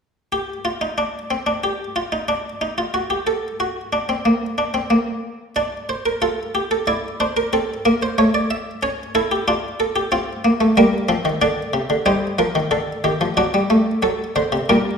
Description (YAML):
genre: classical, baroque-style 3-part fugue for harpsichord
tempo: 92 BPM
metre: 4/4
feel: straight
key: unclear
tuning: A4 = 440 Hz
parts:
  - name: buff-stop harpsichord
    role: solo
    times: 0.3-15.0 s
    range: Bb2 to E5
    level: -18 LUFS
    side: equal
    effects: none
room: wet recital hall reverb, RT60 1.3 s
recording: recorded in a church or concert hall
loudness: -18 LUFS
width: side -6 dB against mid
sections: 0.3-15.0 A section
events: none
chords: 0.3 N.C.; 5.6 Dm; 6.9 Bbmaj9#11; 8.2 A; 9.5 Dm; 10.8 Gm; 12.1 Am7b5; 13.4 D7/F#